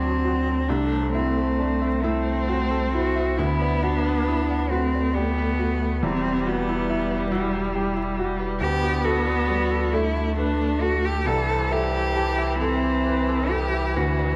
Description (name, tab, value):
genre	neoclassical piano and strings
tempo	45 BPM (dotted quarters)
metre	6/8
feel	rubato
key	A dorian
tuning	A4 = 440 Hz
part	rich cello	second line	0.0-14.4 s	G3 to A4	-27 LUFS	equal	none
part	bright upright piano	accompaniment	0.0-14.4 s	C2 to B4	-31 LUFS	equal	none
part	rich viola	accompaniment	0.0-14.4 s	E3 to C4	-31 LUFS	equal	none
part	concert harp	arpeggios	0.0-14.4 s	D4 to B5	-34 LUFS	equal	analog delay
part	warm sub bass	bass	0.0-14.4 s	E1 to D2	-30 LUFS	equal	none
room	moderate recital hall reverb, RT60 1.4 s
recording	close, detailed microphones, vinyl crackle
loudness	-23 LUFS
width	mono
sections	0.0-14.4 A section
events	none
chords	0.0 D; 0.7 Am/C; 3.4 Bm/D; 6.0 Emadd9; 8.6 D; 11.3 Am/C